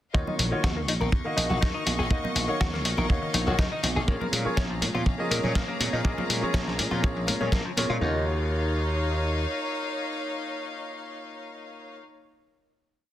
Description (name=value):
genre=nu-disco, nu disco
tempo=122 BPM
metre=4/4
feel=straight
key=Eb minor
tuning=A4 = 440 Hz
part: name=warm grand piano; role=accompaniment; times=0.1-12.0 s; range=Bb3 to F5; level=-33 LUFS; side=equal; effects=tape echo
part: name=rich chamber violin section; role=sustained chords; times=0.1-12.0 s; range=Eb4 to Db6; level=-33 LUFS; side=left 3 dB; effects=sidechain pumping
part: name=wide unison pluck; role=arpeggios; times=0.1-8.2 s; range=Db3 to Ab3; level=-38 LUFS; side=left 2 dB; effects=none
part: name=direct-recorded clean electric guitar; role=riff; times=0.1-8.2 s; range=F3 to Bb4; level=-33 LUFS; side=left 2 dB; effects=analog chorus, low-pass filter, tape echo
part: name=glassy slap bass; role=bass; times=0.1-9.4 s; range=Bb1 to Bb2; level=-29 LUFS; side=equal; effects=sidechain pumping
part: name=kick drum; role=drums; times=0.1-7.6 s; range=none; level=-25 LUFS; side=equal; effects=none
part: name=congas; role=percussion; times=0.3-7.9 s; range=none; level=-36 LUFS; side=right 4 dB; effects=none
part: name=dusty soul sampler-style drum kit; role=drums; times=0.4-7.9 s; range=hi-hat, snare drum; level=-29 LUFS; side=left 1 dB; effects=overdrive
room=light reverb, studio ambience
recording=dense, heavily limited modern master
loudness=-24 LUFS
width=side -13 dB against mid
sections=0.1-8.0 groove; 8.0-11.9 final chord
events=none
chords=0.1 Ebm9; 4.1 Bbm7; 8.0 Ebm9